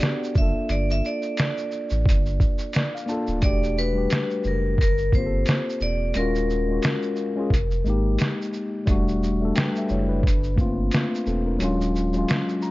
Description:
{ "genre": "lo-fi hip hop", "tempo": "88 BPM", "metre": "4/4", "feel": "swing 57% on 16ths", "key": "unclear", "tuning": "A4 = 441 Hz", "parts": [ { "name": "vibraphone with hard mallets", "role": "melody", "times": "0.0-8.2 s", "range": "A#4 to E5", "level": "-28 LUFS", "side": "left 1 dB", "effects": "low-pass filter" }, { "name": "mellow tine electric piano", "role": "accompaniment", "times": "0.0-12.7 s", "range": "F#3 to A#5", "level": "-26 LUFS", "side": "left 2 dB", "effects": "cassette tape, low-pass filter" }, { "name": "lo-fi sampler-style drum kit", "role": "drums", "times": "0.0-12.7 s", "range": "hi-hat, kick drum, shaker, snare drum", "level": "-23 LUFS", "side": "equal", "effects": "vintage 12-bit sampler grit" }, { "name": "warm sub bass", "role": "bass", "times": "0.4-12.2 s", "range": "D1 to A1", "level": "-25 LUFS", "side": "equal", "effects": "none" } ], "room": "digital ambience", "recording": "nothing above 7.5 kHz", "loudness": "-21 LUFS", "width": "side -19 dB against mid", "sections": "0.0-3.4 A section; 3.4-12.7 B section", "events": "none", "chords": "0.4 Gm9; 3.4 Em11; 4.8 Gm11; 6.1 D#m11; 7.5 Fm11; 8.9 Em11; 10.2 Gm11; 11.6 D#m11" }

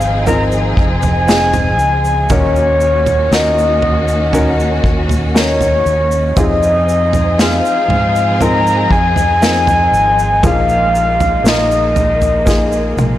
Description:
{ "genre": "pop ballad", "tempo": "59 BPM", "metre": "4/4", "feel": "straight", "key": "Eb dorian", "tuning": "A4 = 436 Hz", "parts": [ { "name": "soft octave-layered synth lead", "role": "melody", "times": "0.0-13.0 s", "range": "Db5 to Bb5", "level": "-14 LUFS", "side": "left 1 dB", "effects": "chorus" }, { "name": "warm upright piano", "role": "accompaniment", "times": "0.0-13.2 s", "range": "Bb2 to Bb4", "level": "-19 LUFS", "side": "left 1 dB", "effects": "none" }, { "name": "warm symphonic string section", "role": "sustained chords", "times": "0.0-13.2 s", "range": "Eb3 to Ab4", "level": "-21 LUFS", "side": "equal", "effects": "none" }, { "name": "fingered electric bass", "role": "bass", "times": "0.0-13.2 s", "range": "F1 to Ab2", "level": "-17 LUFS", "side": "equal", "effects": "none" }, { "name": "tube shaker", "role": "percussion", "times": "0.0-13.2 s", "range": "none", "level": "-34 LUFS", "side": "right 4 dB", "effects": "none" }, { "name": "unplugged drum kit", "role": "drums", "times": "0.3-13.2 s", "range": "kick drum, snare drum, toms", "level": "-17 LUFS", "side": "equal", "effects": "none" } ], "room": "moderate lush hall reverb, RT60 2.2 s", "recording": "blown-out, overdriven recording, overdrive", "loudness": "-10 LUFS", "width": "side -13 dB against mid", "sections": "0.0-13.2 A section", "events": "drum fill 12.5-13.2", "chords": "0.0 Fm7; 2.3 Ebm7; 6.4 Fm7; 10.4 Bb7sus4" }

